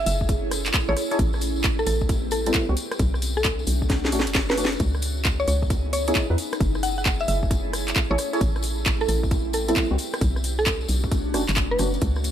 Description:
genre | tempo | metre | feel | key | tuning
UK garage, two-step garage | 133 BPM | 4/4 | swing 65% on 16ths | unclear | A4 = 445 Hz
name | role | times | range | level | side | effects
mallet-like synth pluck | melody | 0.0-12.1 s | A4 to F#5 | -28 LUFS | equal | chorus, dub echo
ethereal airy pad | sustained chords | 0.0-12.3 s | A3 to G#4 | -32 LUFS | right 1 dB | ensemble chorus, built-in reverb, phaser, sidechain pumping
hollow knocking FM bass | bass | 0.0-12.3 s | F#1 to E2 | -26 LUFS | equal | none
house drum kit | drums | 0.1-12.3 s | handclaps, hi-hat, rim click, snare drum | -26 LUFS | equal | none
tambourine | percussion | 0.1-12.3 s | none | -35 LUFS | left 6 dB | none
electronic kick drum | drums | 0.2-12.1 s | none | -26 LUFS | equal | none
percussive organ stab | stabs | 0.9-11.9 s | G3 to C#5 | -27 LUFS | equal | lush chorus, dub echo
room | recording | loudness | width
little or no reverb | none | -21 LUFS | side -10 dB against mid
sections
0.0-12.3 A section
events
drum fill 3.9-4.8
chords
0.0 F#m9; 1.2 Am9; 2.8 Bm9; 4.8 C#m9; 6.4 F#m9; 8.4 Am9; 10.0 Bm9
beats
0.29 0.74 | 1.19 1.64 2.09 2.54 | 3.00 3.45 3.90 4.35 | 4.80 5.25 5.70 6.15 | 6.61 7.06 7.51 7.96 | 8.41 8.86 9.31 9.76 | 10.21 10.66 11.12 11.57 | 12.02

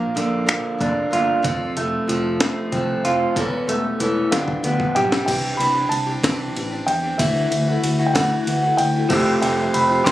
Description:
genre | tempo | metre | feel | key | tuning
folk rock and heartland rock | 63 BPM (dotted quarters) | 6/8 | straight | unclear | A4 = 441 Hz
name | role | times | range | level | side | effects
picked steel-string acoustic guitar | accompaniment | 0.0-10.1 s | G2 to C5 | -25 LUFS | left 2 dB | none
electric guitar through a small old amp | riff | 0.0-5.3, 9.1-10.1 s | E2 to G4 | -21 LUFS | right 1 dB | spring reverb
fingered electric bass | bass | 0.0-10.1 s | E1 to E2 | -26 LUFS | equal | none
breakbeat sampler-style drum kit | drums | 0.2-10.1 s | crash cymbal, finger snaps, hi-hat, kick drum, ride cymbal, snare drum, toms | -25 LUFS | equal | none
dark concert grand piano | melody | 4.3-10.1 s | E5 to C6 | -22 LUFS | right 1 dB | analog delay
tambourine | percussion | 5.3-10.1 s | none | -36 LUFS | right 1 dB | none
room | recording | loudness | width
light reverb | recorded on a phone in the room, studio ambience | -18 LUFS | side -14 dB against mid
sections
0.0-5.3 A section; 5.3-10.1 B section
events
drum fill 4.3-5.3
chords
0.0 Bb; 1.4 F; 3.4 Aadd9/E; 4.3 G7; 5.3 Cadd9; 7.2 Dadd9; 9.1 Fadd9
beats
0.48 | 1.44 2.40 | 3.36 4.32 | 5.28 6.24 | 7.19 8.15 | 9.11 10.06

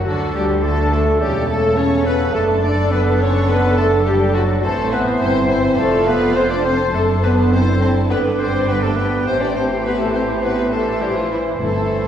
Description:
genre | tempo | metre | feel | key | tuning
quick classical-period movement for symphony orchestra | 104 BPM | 4/4 | straight | D major | A4 = 440 Hz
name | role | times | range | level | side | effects
bright studio violin section | melody | 0.0-12.1 s | E4 to D5 | -29 LUFS | left 3 dB | none
bright small flute group | second line | 0.0-12.1 s | E4 to D5 | -27 LUFS | left 2 dB | none
rich studio viola section | accompaniment | 0.0-12.1 s | C4 to C5 | -25 LUFS | right 1 dB | none
warm bassoon | accompaniment | 0.0-12.1 s | C#3 to F3 | -25 LUFS | right 2 dB | none
mellow French horn section | sustained chords | 0.0-12.1 s | E3 to D4 | -20 LUFS | left 1 dB | none
clear studio cello section | bass | 0.0-12.1 s | E2 to D3 | -23 LUFS | right 1 dB | none
rich studio double bass section | bass | 0.0-12.1 s | E1 to D2 | -24 LUFS | right 1 dB | none
bright clarinet | second line | 0.1-12.0 s | E4 to D5 | -26 LUFS | left 1 dB | none
rich studio violin section | second line | 0.1-12.1 s | A4 to A5 | -29 LUFS | left 2 dB | none
warm oboe | second line | 0.1-12.1 s | A4 to D5 | -29 LUFS | right 1 dB | none
timpani | percussion | 11.6-12.1 s | G2 | -26 LUFS | left 1 dB | none
room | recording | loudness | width
wet scoring stage reverb, RT60 1.7 s | heard from further back in the room | -15 LUFS | side -9 dB against mid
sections
0.0-12.1 A section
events
none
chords
0.1 D; 1.2 A/E; 2.3 D/F#; 4.6 Am; 5.8 F; 6.9 D7/F#; 8.1 G; 9.3 Am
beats
| 0.07 0.64 1.20 1.77 | 2.35 2.92 3.50 4.07 | 4.64 5.21 5.79 6.36 | 6.94 7.52 8.10 8.68 | 9.26 9.85 10.43 11.01 | 11.61

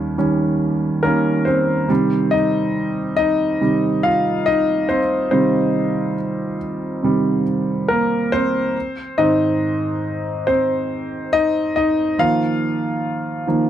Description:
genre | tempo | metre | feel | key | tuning
pop | 70 BPM | 4/4 | straight | unclear | A4 = 441 Hz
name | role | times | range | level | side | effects
warm concert grand piano | solo | 0.0-13.7 s | Eb2 to F5 | -17 LUFS | equal | none
room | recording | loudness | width
light reverb | dry, close 1970s-style studio recording | -17 LUFS | side -10 dB against mid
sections
0.0-1.9 A section; 1.9-13.7 B section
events
grand piano solo 1.9-13.7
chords
0.0 Eb7; 1.9 Cm; 8.8 Ab; 12.2 Ebsus2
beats
0.18 1.04 | 1.90 2.75 3.61 4.47 | 5.33 6.18 7.04 7.90 | 8.75 9.61 10.47 11.33 | 12.18 13.04

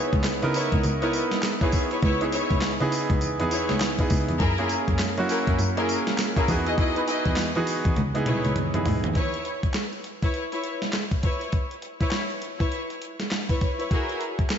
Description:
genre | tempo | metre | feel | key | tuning
R&B, new jack swing | 101 BPM | 4/4 | swing 61% on 16ths | C# dorian | A4 = 439 Hz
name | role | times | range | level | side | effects
clear baby grand piano | accompaniment | 0.0-9.2 s | A#3 to B4 | -27 LUFS | right 2 dB | slapback echo
warm cello | bass | 0.1-9.1 s | C#2 to F#3 | -28 LUFS | equal | none
clean 12-bit digital drum machine | drums | 0.1-14.6 s | handclaps, hi-hat, kick drum, snare drum, tambourine, toms | -26 LUFS | equal | none
rich symphonic string section | stabs | 0.5-14.2 s | E4 to D#5 | -29 LUFS | left 2 dB | ping-pong delay
room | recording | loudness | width
moderate lush hall reverb, RT60 2.6 s | big arena sound, nothing above 7.8 kHz | -22 LUFS | side -8 dB against mid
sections
0.0-9.2 A section; 9.2-14.6 B section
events
drum fill 8.0-9.2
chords
0.0 C#m7; 4.4 F#9; 6.5 Emaj7; 8.0 C#m7; 13.9 F#9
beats
0.25 0.84 1.43 | 2.03 2.62 3.22 3.81 | 4.40 5.00 5.59 6.19 | 6.78 7.37 7.97 8.56 | 9.16 9.75 10.35 10.94 | 11.53 12.13 12.72 13.31 | 13.91 14.50

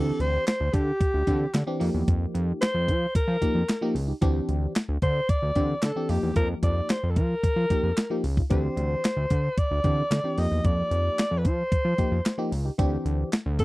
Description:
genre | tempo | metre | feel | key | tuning
early-eighties boogie funk | 112 BPM | 4/4 | straight | D phrygian | A4 = 436 Hz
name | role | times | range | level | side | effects
warm alto saxophone | melody | 0.0-13.6 s | G4 to Eb5 | -28 LUFS | equal | slapback echo
FM electric piano | accompaniment | 0.0-13.3 s | E3 to G4 | -29 LUFS | equal | chorus, phaser
fat analog bass | bass | 0.0-13.6 s | C#2 to F3 | -26 LUFS | equal | none
clean 12-bit digital drum machine | drums | 0.2-13.6 s | handclaps, hi-hat, kick drum, snare drum | -25 LUFS | equal | none
room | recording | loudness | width
little or no reverb | dry, close 1970s-style studio recording | -23 LUFS | side -20 dB against mid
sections
0.0-13.6 A section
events
none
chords
0.0 D9sus4; 1.8 F9sus4; 4.2 D9sus4; 6.1 F9sus4; 8.5 D9sus4; 10.4 F9sus4; 12.8 D9sus4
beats
0.47 1.00 1.54 | 2.08 2.61 3.15 3.68 | 4.22 4.75 5.29 5.83 | 6.36 6.90 7.43 7.97 | 8.50 9.04 9.57 10.11 | 10.65 11.18 11.72 12.25 | 12.79 13.32

